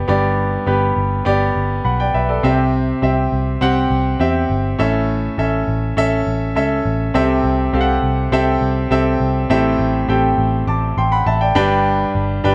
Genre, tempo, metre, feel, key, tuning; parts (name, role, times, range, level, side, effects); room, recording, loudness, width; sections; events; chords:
piano-driven pop; 102 BPM; 4/4; straight; A4 = 439 Hz
clear concert grand piano; accompaniment; 0.0-12.5 s; G2 to D6; -19 LUFS; equal
vintage muted picked electric bass; bass; 0.0-12.5 s; G1 to E2; -22 LUFS; equal
moderate studio reverb, RT60 0.9 s; -17 LUFS; mono
0.0-7.1 A section; 7.1-12.5 B section
0.0 G; 2.4 C; 4.8 A; 7.1 C6; 9.5 Am7; 11.6 G